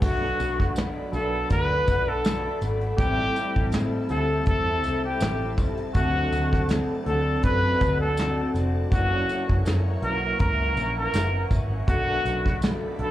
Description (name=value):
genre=indie pop, bedroom pop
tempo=81 BPM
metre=4/4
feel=swing 55% on 16ths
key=unclear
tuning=A4 = 439 Hz
part: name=breathy trumpet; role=melody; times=0.0-13.1 s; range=F#4 to B4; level=-26 LUFS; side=equal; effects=wide subtle chorus, slapback echo
part: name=electric guitar through a small old amp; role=accompaniment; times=0.0-13.1 s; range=F#2 to F#4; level=-32 LUFS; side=left 3 dB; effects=lush chorus, warbly pitch drift, slapback echo
part: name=reed electric piano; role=accompaniment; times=0.0-13.1 s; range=F#3 to F#5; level=-34 LUFS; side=right 3 dB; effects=fast tremolo, slapback echo
part: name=ethereal airy pad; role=sustained chords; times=0.4-13.1 s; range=G4 to C#6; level=-36 LUFS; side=left 1 dB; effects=ensemble chorus, built-in reverb, plate reverb
part: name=vintage muted picked electric bass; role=bass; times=0.0-13.1 s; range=F1 to A2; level=-27 LUFS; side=equal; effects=none
part: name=soft brush drum kit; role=drums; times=0.0-13.1 s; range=crash cymbal, hi-hat, kick drum, snare drum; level=-26 LUFS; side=equal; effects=none
part: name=tambourine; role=percussion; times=0.0-12.8 s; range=none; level=-46 LUFS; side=right 3 dB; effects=none
room=light reverb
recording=live gig heard through the venue's PA, club ambience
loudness=-22 LUFS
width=side -14 dB against mid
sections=0.0-13.1 A section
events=none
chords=0.0 Bm7; 3.0 Am7; 6.0 D7; 8.9 F#7; 11.9 Bm7